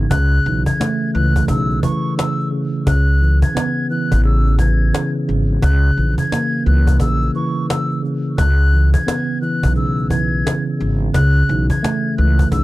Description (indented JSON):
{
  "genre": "hip hop, boom-bap hip-hop",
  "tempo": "87 BPM",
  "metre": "4/4",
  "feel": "swing 61% on 16ths",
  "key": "unclear",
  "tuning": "A4 = 440 Hz",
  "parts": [
    { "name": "mellow tine electric piano", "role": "accompaniment", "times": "0.0-12.6 s", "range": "C#3 to B3", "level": "-20 LUFS", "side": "right 1 dB", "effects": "slow stereo tremolo, cassette tape, high-pass filter, low-pass filter" },
    { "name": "upright bass", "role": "bass", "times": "0.0-12.6 s", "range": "G#1 to C#2", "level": "-15 LUFS", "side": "equal", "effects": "none" },
    { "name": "mellow silver concert flute", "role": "melody", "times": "0.1-12.6 s", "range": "C#6 to G#6", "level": "-24 LUFS", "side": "left 2 dB", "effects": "high-pass filter, low-pass filter, digital delay" },
    { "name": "cajon", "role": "drums", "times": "0.1-12.6 s", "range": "none", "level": "-21 LUFS", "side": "equal", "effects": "none" }
  ],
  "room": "little or no reverb",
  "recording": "dark, warm production",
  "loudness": "-14 LUFS",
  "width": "side -18 dB against mid",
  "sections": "0.0-12.6 A section",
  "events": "none",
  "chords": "0.1 A; 2.9 B9sus4; 5.6 A#dim; 8.4 C#m7; 11.1 A"
}